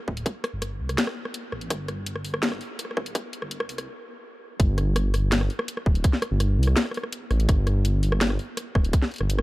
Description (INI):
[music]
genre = half-time drum and bass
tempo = 166 BPM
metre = 4/4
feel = half-time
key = unclear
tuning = A4 = 440 Hz
[part]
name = dark detuned saw bass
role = bass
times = 0.1-9.4 s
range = D1 to C2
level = -24 LUFS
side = equal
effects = none
[part]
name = electronic kick drum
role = drums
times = 0.1-9.0 s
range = none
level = -22 LUFS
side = equal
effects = overdrive, high-pass filter on kick, small room ambience
[part]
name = drum and bass drum kit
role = drums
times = 0.2-9.4 s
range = hi-hat, rim click, snare drum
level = -28 LUFS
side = equal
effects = overdrive, small room ambience
[sound]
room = little or no reverb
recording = dark, warm production, high-pass filter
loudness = -23 LUFS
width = side -19 dB against mid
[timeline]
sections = 0.0-4.6 A section; 4.6-9.4 B section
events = build-up 0.0-4.6; stop 3.9-4.6; drop 4.6-9.4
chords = none